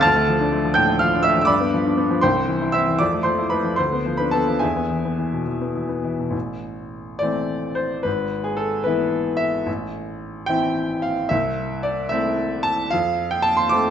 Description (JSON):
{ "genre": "classical, romantic character piece for solo piano", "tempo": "68-83 BPM (dotted quarters)", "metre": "6/8", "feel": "rubato", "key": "A minor", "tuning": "A4 = 437 Hz", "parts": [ { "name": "bright baby grand piano", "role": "solo", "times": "0.0-13.9 s", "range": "G#1 to A6", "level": "-19 LUFS", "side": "equal", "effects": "none" } ], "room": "moderate recital hall reverb, RT60 1.5 s", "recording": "nothing above 7.9 kHz", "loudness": "-19 LUFS", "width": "side -8 dB against mid", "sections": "0.0-6.3 A section; 6.3-13.9 B section", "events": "none", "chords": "0.0 Dm; 1.5 G7; 2.2 C; 3.0 Fmaj7; 3.8 Bdim/D; 4.6 E; 6.3 Am; 8.1 E/G#; 9.7 Am; 11.3 Am/C; 12.9 F", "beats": "| 0.03 0.76 | 1.50 2.24 | 3.00 3.78 | 4.62 5.47 | 6.34 7.21 | 8.05 8.86 | 9.67 10.49 | 11.32 12.12 | 12.93 13.73" }